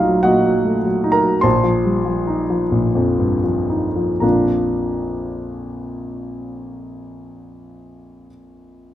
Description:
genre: classical, virtuoso piano study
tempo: 75-107 BPM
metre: 4/4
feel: rubato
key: Bb major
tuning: A4 = 442 Hz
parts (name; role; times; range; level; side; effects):
- warm concert grand piano; solo; 0.0-8.9 s; Bb1 to C6; -17 LUFS; equal; none
room: moderate large studio reverb, RT60 1.3 s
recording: none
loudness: -15 LUFS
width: side -12 dB against mid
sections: 0.0-4.2 A section; 4.2-7.3 B section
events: slowing down 0.0-4.2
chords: 0.0 Ebm/Bb; 1.4 F7/Bb; 4.2 Bb

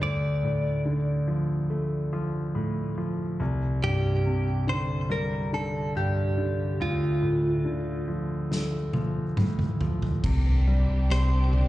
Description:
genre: pop ballad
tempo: 70 BPM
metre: 4/4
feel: straight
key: D minor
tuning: A4 = 436 Hz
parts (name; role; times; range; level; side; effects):
- direct-recorded clean electric guitar; melody; 0.0-11.7 s; F4 to D5; -30 LUFS; equal; phaser, slapback echo, digital delay
- clear concert grand piano; accompaniment; 0.0-11.7 s; C2 to D4; -26 LUFS; equal; none
- loose indie drum kit; drums; 8.5-11.7 s; crash cymbal, kick drum, rim click, snare drum, toms; -28 LUFS; equal; none
- warm studio string section; sustained chords; 10.2-11.7 s; C3 to G4; -31 LUFS; equal; none
- warm sub bass; bass; 10.2-11.7 s; C2; -22 LUFS; equal; none
room: moderate club reverb, RT60 0.5 s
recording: live gig heard through the venue's PA, recital hall reverb, nothing above 10.5 kHz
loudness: -24 LUFS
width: side -16 dB against mid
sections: 0.0-10.2 A section; 10.2-11.7 B section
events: drum fill 8.5-10.2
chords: 0.0 Dm; 3.4 Csus2; 6.8 Dm; 10.2 Csus2

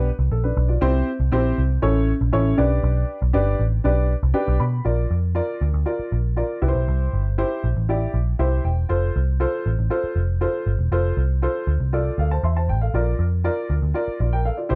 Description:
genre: uptempo 1960s-style soul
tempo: 119 BPM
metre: 4/4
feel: straight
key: unclear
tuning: A4 = 440 Hz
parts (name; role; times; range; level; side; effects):
- warm upright piano; accompaniment; 0.0-14.8 s; C4 to C6; -26 LUFS; equal; none
- vintage muted picked electric bass; bass; 0.0-14.8 s; E1 to B2; -22 LUFS; equal; none
room: light reverb, small room ambience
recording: dark, warm production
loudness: -22 LUFS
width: mono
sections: 0.0-4.9 A section; 4.9-14.8 B section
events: upright piano fill 4.1-4.9, 8.1-8.9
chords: 0.0 G (rootless); 0.8 C; 1.8 A; 2.6 G; 4.9 Bb; 6.6 C; 8.9 F; 12.9 Bb

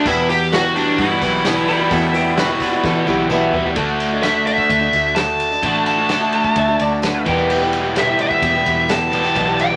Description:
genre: folk rock and heartland rock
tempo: 129 BPM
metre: 4/4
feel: straight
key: E minor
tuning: A4 = 440 Hz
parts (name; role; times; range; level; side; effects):
- dark smooth lead guitar; melody; 0.0-9.8 s; D4 to A5; -20 LUFS; equal; overdrive
- picked old ladder-braced acoustic guitar; accompaniment; 0.0-9.8 s; E2 to G4; -25 LUFS; equal; none
- crunchy overdriven guitar; riff; 0.0-9.8 s; E2 to G4; -22 LUFS; equal; none
- fingered electric bass; bass; 0.1-9.8 s; A1 to E3; -30 LUFS; equal; none
- unplugged drum kit; drums; 0.1-9.7 s; crash cymbal, hi-hat, kick drum, ride cymbal, snare drum, toms; -28 LUFS; equal; none
- tambourine; percussion; 0.1-9.8 s; none; -43 LUFS; equal; none
- twelve-string electric guitar; second line; 1.7-3.6, 6.6-7.8 s; E4 to E5; -25 LUFS; equal; none
room: moderate studio ambience, RT60 0.5 s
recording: none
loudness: -17 LUFS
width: mono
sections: 0.0-3.8 A section; 3.8-9.8 B section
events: drum fill 2.8-3.8; lead electric guitar solo 3.8-9.8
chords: 0.1 Emadd9; 3.8 D; 7.3 Em

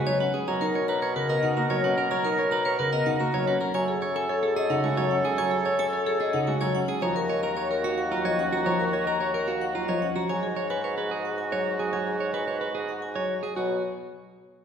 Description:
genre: classical, minimalist pattern music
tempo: 110 BPM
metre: 3/4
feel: straight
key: B lydian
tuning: A4 = 440 Hz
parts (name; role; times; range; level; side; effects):
- vibraphone with hard mallets; melody; 0.0-13.8 s; G#4 to A#5; -28 LUFS; left 5 dB; none
- bright oboe; second line; 0.0-13.4 s; F#4 to B4; -32 LUFS; right 3 dB; none
- warm grand piano; accompaniment; 0.0-13.8 s; C#3 to C#4; -31 LUFS; equal; none
- clean electric guitar; arpeggios; 0.0-13.8 s; D#4 to C#5; -31 LUFS; right 6 dB; none
- warm bassoon; bass; 0.0-13.8 s; D#2 to B2; -33 LUFS; right 1 dB; none
room: wet concert hall reverb, RT60 1.7 s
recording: recorded in a church or concert hall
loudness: -24 LUFS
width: side -7 dB against mid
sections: 0.0-13.6 A section; 13.6-14.6 B section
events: none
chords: 0.5 Bmaj7; 3.7 F#madd9; 7.0 D#m7; 10.3 G#m7; 13.6 B5

